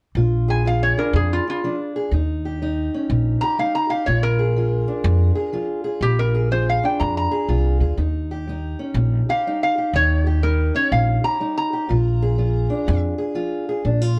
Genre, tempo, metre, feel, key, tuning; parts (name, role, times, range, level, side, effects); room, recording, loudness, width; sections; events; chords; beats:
acoustic country blues, solo or duo; 123 BPM; 4/4; swing 65% on 8ths; Bb mixolydian; A4 = 440 Hz
upright bass; bass; 0.1-14.2 s; Bb1 to F2; -22 LUFS; equal
fingerpicked steel-string acoustic guitar; accompaniment; 0.2-14.2 s; Bb2 to Ab4; -27 LUFS; equal
lap resonator guitar; melody; 0.5-13.0 s; F4 to Bb5; -24 LUFS; equal
light reverb; dark, warm production; -21 LUFS; mono
0.2-14.2 A section
0.2 Bb7; 2.1 Eb7; 4.1 Bb7; 8.0 Eb7; 11.9 Bb7
| 0.17 0.66 1.15 1.63 | 2.12 2.61 3.10 3.59 | 4.08 4.57 5.05 5.54 | 6.03 6.52 7.01 7.50 | 7.99 8.47 8.96 9.45 | 9.94 10.43 10.92 11.41 | 11.89 12.38 12.87 13.36 | 13.85